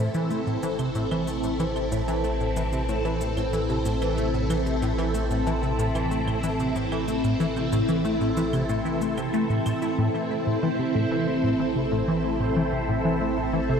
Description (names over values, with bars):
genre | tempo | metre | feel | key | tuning
ambient, sequencer-driven space music | 93 BPM | 4/4 | straight | A minor | A4 = 440 Hz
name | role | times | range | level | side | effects
string machine, full ensemble | sustained chords | 0.0-13.8 s | C4 to A4 | -26 LUFS | equal | phaser, ensemble chorus
tight sequenced synth | riff | 0.0-13.8 s | A2 to E4 | -27 LUFS | equal | chorus, phaser, ping-pong delay
fat analog bass | bass | 0.0-13.8 s | A1 | -32 LUFS | equal | none
shaker and claves | percussion | 0.1-9.9 s | none | -45 LUFS | right 1 dB | ping-pong delay
bubbling stepped-filter texture | texture | 10.0-13.8 s | C5 | -36 LUFS | right 3 dB | chorus, built-in reverb
room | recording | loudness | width
wet lush hall reverb, RT60 3.1 s | dark, warm production | -23 LUFS | side -7 dB against mid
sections
0.0-10.0 A section; 10.0-13.8 B section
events
none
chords
0.0 Am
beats
0.31 0.95 1.60 | 2.24 2.89 3.53 4.18 | 4.82 5.47 6.11 6.76 | 7.40 8.05 8.69 9.34 | 9.98 10.63 11.27 11.92 | 12.56 13.21